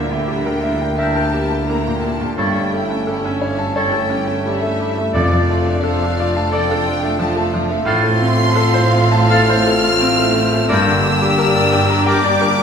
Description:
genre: classical, romantic movement for piano and orchestra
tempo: 87 BPM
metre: 4/4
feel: rubato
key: D minor, F major from 7.9 s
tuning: A4 = 440 Hz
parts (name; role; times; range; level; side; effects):
- clear concert grand piano; melody; 0.0-12.6 s; D2 to Bb5; -18 LUFS; equal; none
- rich studio violin section; melody; 0.0-12.6 s; D5 to F6; -22 LUFS; left 1 dB; none
- dark studio violin section; second line; 0.0-12.6 s; A3 to G5; -27 LUFS; left 1 dB; none
- warm studio viola section; accompaniment; 0.0-12.6 s; F3 to G4; -26 LUFS; equal; none
- mellow French horn section; sustained chords; 0.0-12.6 s; A3 to G4; -25 LUFS; left 2 dB; none
- warm studio cello section; bass; 0.0-12.6 s; F2 to D3; -24 LUFS; right 2 dB; none
- warm studio double bass section; bass; 0.0-12.6 s; F1 to D2; -24 LUFS; right 2 dB; none
- bright clarinet; second line; 1.0-12.3 s; A4 to Bb4; -28 LUFS; left 2 dB; none
- clear oboe; second line; 1.0-12.3 s; C#5 to F5; -27 LUFS; right 1 dB; none
- mellow hollow flute section; second line; 1.0-12.4 s; G6 to A6; -24 LUFS; left 1 dB; none
- timpani; percussion; 5.1-6.1 s; F2; -24 LUFS; equal; none
room: wet recital hall reverb, RT60 1.6 s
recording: minimal, uncompressed stereo recording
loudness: -14 LUFS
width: side -7 dB against mid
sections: 0.0-12.6 A section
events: none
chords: 0.0 Edim/D; 2.4 A7/G; 5.1 Dm/F; 7.9 F/A; 10.7 Gm

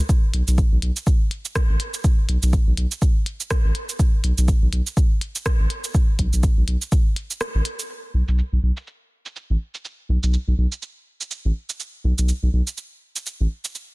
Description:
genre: minimal techno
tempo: 123 BPM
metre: 4/4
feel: swing 58% on 16ths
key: unclear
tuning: A4 = 440 Hz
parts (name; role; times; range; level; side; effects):
- electronic kick drum; drums; 0.1-7.0 s; none; -18 LUFS; equal; none
- minimal click drum kit; drums; 0.1-13.9 s; hi-hat, rim click, shaker; -29 LUFS; right 2 dB; low-pass filter on perc, low-pass filter on hats, low-pass filter on snare
- saturated sub bass; bass; 0.3-13.5 s; A1 to B1; -19 LUFS; equal; sidechain pumping
room: little or no reverb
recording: dense, heavily limited modern master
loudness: -19 LUFS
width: side -24 dB against mid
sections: 0.0-7.9 A section; 7.9-13.9 B section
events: drop 0.0-7.9; break 7.4-7.9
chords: none

